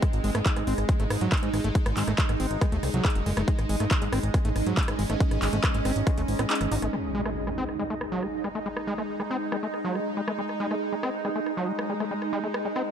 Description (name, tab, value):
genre	psychedelic trance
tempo	139 BPM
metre	4/4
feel	straight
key	unclear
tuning	A4 = 439 Hz
part	evolving wavetable pad	sustained chords	0.0-12.9 s	G#3 to D#4	-33 LUFS	right 1 dB	phaser, built-in reverb, sidechain pumping
part	overdriven acid bass	riff	0.0-12.8 s	F#3 to D#4	-32 LUFS	equal	distortion, auto-pan, sidechain pumping, dub echo
part	big-room dance drum kit	drums	0.0-12.8 s	handclaps, hi-hat, rim click	-32 LUFS	equal	overdrive, low-pass filter on snare, low-pass filter on hats, low-pass filter on cymbals
part	electronic kick drum	drums	0.0-6.2 s	none	-25 LUFS	equal	overdrive
part	ethereal airy pad	texture	0.0-12.9 s	D#4 to D#5	-33 LUFS	right 2 dB	ensemble chorus, built-in reverb, phaser, sidechain pumping
part	fat analog bass	bass	0.1-6.9 s	D#1 to G#2	-28 LUFS	equal	none
part	impact	sound effects	6.9-8.7 s	none	-38 LUFS	equal	none
room	light reverb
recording	dark, warm production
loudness	-24 LUFS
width	side -8 dB against mid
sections	0.0-6.9 A section; 6.9-12.9 B section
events	drop 0.0-6.9; kick drops out 6.5-6.9; impact 6.9-8.7; filter sweep on drum 6.9-12.9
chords	0.0 G#5